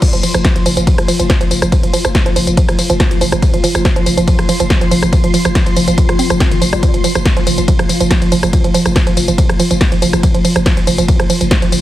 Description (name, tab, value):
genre	driving peak-time techno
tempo	141 BPM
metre	4/4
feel	straight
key	unclear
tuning	A4 = 440 Hz
part	woody wave-folded pluck	riff	0.0-11.8 s	Eb3 to C4	-16 LUFS	right 4 dB	chorus, sidechain pumping, digital delay
part	swarming drone	drone	0.0-11.8 s	F3 to F4	-20 LUFS	left 2 dB	built-in reverb, sidechain pumping
part	electronic kick drum	drums	0.0-11.6 s	none	-13 LUFS	left 1 dB	none
part	punchy analog drum machine	drums	0.0-11.8 s	crash cymbal, hi-hat, ride cymbal, rim click, snare drum, tambourine	-18 LUFS	left 1 dB	none
part	growling 808-style bass	bass	0.1-11.8 s	F1	-21 LUFS	left 1 dB	overdrive, sidechain pumping, low-pass filter
room	digital ambience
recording	heavily compressed radio sound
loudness	-10 LUFS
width	side -14 dB against mid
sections	0.0-11.8 A section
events	none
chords	0.0 F5